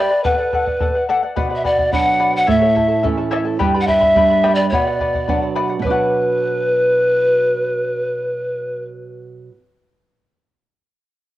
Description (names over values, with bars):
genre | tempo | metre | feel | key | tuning
andean folk, Andean ensemble | 107 BPM | 2/4 | straight | B minor | A4 = 440 Hz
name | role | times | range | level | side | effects
breathy pan flute | melody | 0.0-8.8 s | B4 to F#5 | -16 LUFS | equal | cassette tape
charango | accompaniment | 0.0-9.6 s | E4 to B5 | -21 LUFS | left 4 dB | cassette tape
bombo | percussion | 0.2-6.1 s | none | -25 LUFS | equal | none
flamenco guitar | accompaniment | 1.4-9.6 s | G2 to F#4 | -22 LUFS | right 5 dB | cassette tape
room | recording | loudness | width
wet spring reverb, RT60 1.6 s | home recording on cassette | -14 LUFS | side -15 dB against mid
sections
0.0-5.8 A section; 5.8-8.1 B section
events
none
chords
0.2 D; 1.4 Bm; 2.5 A; 3.6 G; 4.7 Bm